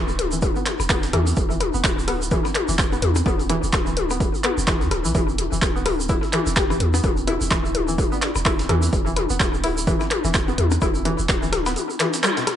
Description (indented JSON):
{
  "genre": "minimal techno",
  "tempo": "127 BPM",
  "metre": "4/4",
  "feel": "swing 58% on 16ths",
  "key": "unclear",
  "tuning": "A4 = 441 Hz",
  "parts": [
    { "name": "punchy sub bass", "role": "bass", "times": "0.0-11.8 s", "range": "D1 to E2", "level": "-25 LUFS", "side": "right 1 dB", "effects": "tube saturation, sidechain pumping" },
    { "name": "tube shaker", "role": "percussion", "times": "0.1-12.5 s", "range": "none", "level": "-33 LUFS", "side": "right 5 dB", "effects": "analog delay" },
    { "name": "breakbeat sampler-style drum kit", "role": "drums", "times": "0.2-12.6 s", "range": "hi-hat, snare drum", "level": "-36 LUFS", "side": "equal", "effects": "none" },
    { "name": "punchy analog drum machine", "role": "drums", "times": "0.2-12.6 s", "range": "handclaps, hi-hat", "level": "-25 LUFS", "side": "right 1 dB", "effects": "none" },
    { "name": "minimal click drum kit", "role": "percussion", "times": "0.2-12.6 s", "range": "percussion blips, rim click, toms", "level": "-24 LUFS", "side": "left 4 dB", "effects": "analog delay" },
    { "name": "string-like resonator pluck", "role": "riff", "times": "0.3-12.4 s", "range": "B2 to E4", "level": "-28 LUFS", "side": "right 1 dB", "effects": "chorus, cassette tape, sidechain pumping, analog delay" },
    { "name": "electronic kick drum", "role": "drums", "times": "0.4-11.4 s", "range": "none", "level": "-24 LUFS", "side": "right 1 dB", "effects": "none" },
    { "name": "breathy flute-like synth lead", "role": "melody", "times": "6.6-8.3 s", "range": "D4 to G4", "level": "-32 LUFS", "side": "left 2 dB", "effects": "tremolo, wide subtle chorus, analog delay" }
  ],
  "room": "light reverb",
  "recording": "echo-heavy mix, nothing above 11.0 kHz",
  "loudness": "-18 LUFS",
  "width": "side -10 dB against mid",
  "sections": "0.0-12.6 A section",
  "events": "band accent 12.2",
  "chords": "0.0 E5"
}